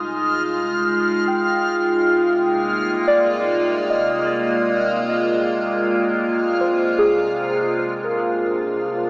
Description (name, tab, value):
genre	ambient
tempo	free time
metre	none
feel	none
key	C minor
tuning	A4 = 440 Hz
part	evolving wavetable pad	sustained chords	0.0-9.1 s	C3 to F4	-19 LUFS	equal	phaser, built-in reverb
part	muted felt-like synth keys	arpeggios	0.0-9.1 s	Ab4 to Eb6	-21 LUFS	equal	chorus, tape echo
part	rich studio double bass section	bass	0.0-9.1 s	C2	-46 LUFS	equal	none
part	backwards swelling texture	texture	0.0-8.0 s	F6	-27 LUFS	equal	built-in reverb
room	wet huge ambient reverb, RT60 7.8 s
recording	small speaker sound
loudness	-17 LUFS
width	side -28 dB against mid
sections	0.0-8.0 A section; 8.0-9.1 B section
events	none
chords	0.0 Cm9; 8.0 Bb9/C